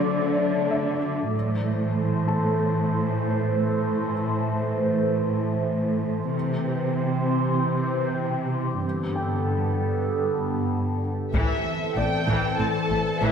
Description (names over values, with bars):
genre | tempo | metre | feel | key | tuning
cinematic, hybrid orchestral and electronic film score | 96 BPM | 4/4 | straight | A dorian | A4 = 438 Hz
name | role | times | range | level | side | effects
phased analog pad | sustained chords | 0.0-13.3 s | D3 to D5 | -25 LUFS | equal | phaser, chorus
warm symphonic cello section | bass | 0.0-13.3 s | G2 to D3 | -27 LUFS | right 2 dB | none
warm grand piano | texture | 0.0-13.3 s | A4 to C6 | -34 LUFS | left 2 dB | ping-pong delay
warm symphonic violin section | melody | 11.3-13.3 s | E5 to A5 | -28 LUFS | left 2 dB | none
rich symphonic viola section | accompaniment | 11.3-13.3 s | E3 to A4 | -29 LUFS | left 1 dB | none
rich symphonic double bass section | bass | 11.3-13.3 s | A1 | -29 LUFS | right 2 dB | none
taiko ensemble | drums | 11.3-12.6 s | none | -30 LUFS | left 2 dB | none
room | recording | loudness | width
wet scoring stage reverb, RT60 1.7 s | none | -22 LUFS | side -7 dB against mid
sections
0.0-11.3 A section; 11.3-13.3 B section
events
build-up 0.0-11.3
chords
0.0 D; 1.3 Am; 6.3 C; 8.8 Gadd9; 11.3 Am